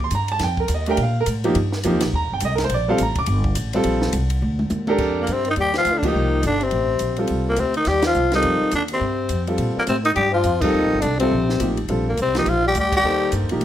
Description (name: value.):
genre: modal jazz.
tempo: 209 BPM.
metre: 4/4.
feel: swing 61% on 8ths.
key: F mixolydian.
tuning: A4 = 438 Hz.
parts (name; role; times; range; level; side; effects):
clear grand piano; accompaniment; 0.0-13.6 s; F3 to D6; -22 LUFS; right 1 dB; none.
upright bass; bass; 0.0-13.6 s; Eb1 to Bb2; -23 LUFS; equal; none.
compact cocktail drum kit; drums; 0.0-13.6 s; crash cymbal, hi-hat, kick drum, ride cymbal, snare drum, toms; -29 LUFS; equal; none.
growling tenor saxophone; melody; 5.2-13.3 s; Bb3 to G4; -20 LUFS; equal; plate reverb.
trombone with cup mute; second line; 5.2-13.3 s; Bb2 to G3; -25 LUFS; left 6 dB; none.
room: light reverb.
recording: none.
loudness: -18 LUFS.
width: side -11 dB against mid.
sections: 0.0-5.0 A section; 5.0-13.6 B section.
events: drum fill 4.4-5.0; band accent 6.0, 8.0, 10.6, 12.9.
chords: 0.4 Eb; 5.0 F9.